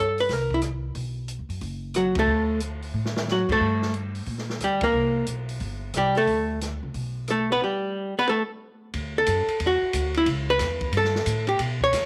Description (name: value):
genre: jazz, small-group swing and bop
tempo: 180 BPM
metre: 4/4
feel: swing 64% on 8ths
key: D major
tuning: A4 = 440 Hz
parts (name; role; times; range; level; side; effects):
- archtop guitar, miked and amplified; melody; 0.0-12.1 s; F#3 to C#5; -25 LUFS; equal; slapback echo
- upright bass; bass; 0.0-12.1 s; F#1 to B2; -32 LUFS; equal; none
- open jazz drum kit; drums; 0.2-12.0 s; crash cymbal, hi-hat, kick drum, ride cymbal, rim click, snare drum; -35 LUFS; equal; none
room: light reverb, small room ambience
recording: none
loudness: -25 LUFS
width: mono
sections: 0.0-8.9 A section; 8.9-12.1 B section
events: band accent 2.1, 4.8; drum fill 2.9-3.3; hollow-body jazz guitar solo 8.9-12.1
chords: 0.3 C7(no3); 1.0 B5; 2.3 D; 3.6 Gmadd9; 4.9 C5; 6.3 D5; 6.9 Asus2/B; 7.6 G; 8.3 N.C.; 8.9 Dadd9; 10.3 C#m7; 10.9 Gsus2